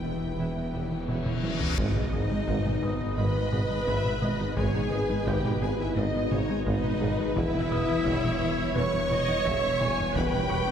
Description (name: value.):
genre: cinematic, hybrid orchestral and electronic film score.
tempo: 86 BPM.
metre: 4/4.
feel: straight.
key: G# harmonic minor.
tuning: A4 = 439 Hz.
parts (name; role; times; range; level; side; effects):
rich symphonic violin section; melody; 0.0-10.7 s; C#5 to C#6; -39 LUFS; left 3 dB; none.
warm symphonic violin section; second line; 0.0-10.7 s; B4 to G#5; -35 LUFS; left 2 dB; none.
clear studio viola section; accompaniment; 0.0-10.7 s; G3 to C#5; -36 LUFS; right 1 dB; none.
chorused pulse-width pad; sustained chords; 0.0-10.7 s; G3 to E5; -37 LUFS; equal; none.
mellow French horn section; sustained chords; 0.0-10.7 s; B3 to C#5; -32 LUFS; equal; none.
analog pluck; arpeggios; 0.0-10.7 s; E3 to G#4; -40 LUFS; right 1 dB; none.
smooth gliding synth bass; riff; 0.0-10.7 s; E2 to G#3; -34 LUFS; left 2 dB; none.
detuned saw bass; bass; 0.0-10.7 s; E1 to G#1; -37 LUFS; equal; none.
rich symphonic cello section; bass; 0.0-10.7 s; D#2 to G#2; -36 LUFS; right 2 dB; none.
warm symphonic double bass section; bass; 0.0-10.6 s; E1 to G#1; -35 LUFS; right 2 dB; none.
warm tuba; bass; 0.0-10.6 s; E1 to G#1; -36 LUFS; right 1 dB; none.
reverse cymbal and impact; sound effects; 1.0-4.6 s; none; -37 LUFS; left 1 dB; none.
felt-muted upright piano; texture; 0.0-10.7 s; B4 to G6; -43 LUFS; left 1 dB; none.
solo taiko drums; drums; 1.1-10.7 s; none; -33 LUFS; equal; none.
room: wet concert hall reverb, RT60 2.2 s.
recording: heard from further back in the room.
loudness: -25 LUFS.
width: side -8 dB against mid.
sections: 0.0-1.8 A section; 1.8-10.7 A section.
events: reverse cymbal 1.0-1.8; drum fill 1.1-1.8; impact 1.8-4.6.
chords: 0.0 Em; 1.8 G#m; 7.4 Em.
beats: 0.39 1.09 | 1.78 2.48 3.18 3.88 | 4.58 5.27 5.97 6.67 | 7.37 8.06 8.76 9.46 | 10.16.